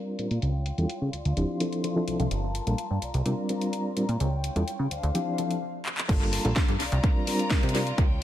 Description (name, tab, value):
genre	filtered disco house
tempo	127 BPM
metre	4/4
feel	straight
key	unclear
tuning	A4 = 440 Hz
part	reed electric piano	accompaniment	0.0-7.8 s	F3 to Bb4	-30 LUFS	equal	fast tremolo, phaser, sidechain pumping, low-pass filter, tape echo
part	dark studio violin section	sustained chords	0.0-8.2 s	Bb3 to C6	-35 LUFS	left 3 dB	sidechain pumping, low-pass filter
part	plucky analog bass	bass	0.2-8.2 s	D1 to C#3	-27 LUFS	equal	sidechain pumping, low-pass filter
part	house drum kit	drums	0.2-8.1 s	crash cymbal, handclaps, hi-hat, snare drum	-33 LUFS	left 1 dB	overdrive, sidechain pumping on hats, low-pass filter on hats, small room ambience, low-pass filter on snare, sidechain pumping on cymbals, low-pass filter on cymbals, tape echo
part	electronic kick drum	drums	6.1-8.1 s	none	-24 LUFS	equal	overdrive, small room ambience
room	light reverb, digital ambience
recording	echo-heavy mix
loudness	-25 LUFS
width	side -12 dB against mid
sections	0.0-6.1 A section; 6.1-8.2 B section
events	filter sweep 0.0-6.1; stop 5.6-6.1; drum fill 5.9; drop 6.1-8.2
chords	0.4 A7b13/C# (rootless); 1.1 Dm7; 2.3 Gm9; 3.0 C9sus4; 4.2 A7b13/C# (rootless); 4.9 Dm7; 6.1 Gm9; 6.8 C9sus4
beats	| 0.42 0.90 1.37 1.84 | 2.31 2.79 3.26 3.73 | 4.20 4.67 5.15 5.62 | 6.09 6.56 7.04 7.51 | 7.98